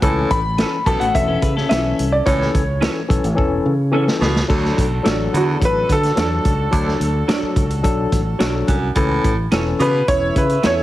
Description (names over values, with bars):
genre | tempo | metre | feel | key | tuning
uptempo 1960s-style soul | 107 BPM | 4/4 | straight | D major | A4 = 440 Hz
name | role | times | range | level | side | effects
barky tine electric piano | accompaniment | 0.0-10.8 s | E3 to A4 | -23 LUFS | left 4 dB | overdrive
raspy baritone saxophone | riff | 0.0-10.0 s | D2 to B2 | -24 LUFS | right 2 dB | none
fingered electric bass | bass | 0.0-10.8 s | E1 to D3 | -21 LUFS | equal | none
vintage drum kit | drums | 0.0-10.8 s | crash cymbal, hi-hat, kick drum, snare drum | -21 LUFS | equal | none
clear concert grand piano | melody | 0.3-10.8 s | F#4 to B5 | -20 LUFS | equal | none
mellow horn section | second line | 0.6-10.8 s | C#4 to E5 | -28 LUFS | equal | none
electric guitar through a small old amp | stabs | 0.6-10.7 s | C#4 to D5 | -26 LUFS | right 5 dB | ensemble chorus, slapback echo
clean electric guitar | riff | 1.0-2.4 s | A3 to B4 | -25 LUFS | left 5 dB | none
room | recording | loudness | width
light reverb, small room ambience | heavily compressed radio sound, multiband compression | -15 LUFS | side -15 dB against mid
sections
0.0-4.5 A section; 4.5-10.8 B section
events
drum fill 3.4-4.5; grand piano solo 4.5-10.8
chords
0.0 A; 4.5 D; 9.0 A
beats
| 0.02 0.58 1.14 1.70 | 2.26 2.82 3.38 3.94 | 4.49 5.05 5.61 6.17 | 6.73 7.29 7.85 8.40 | 8.96 9.52 10.08 10.64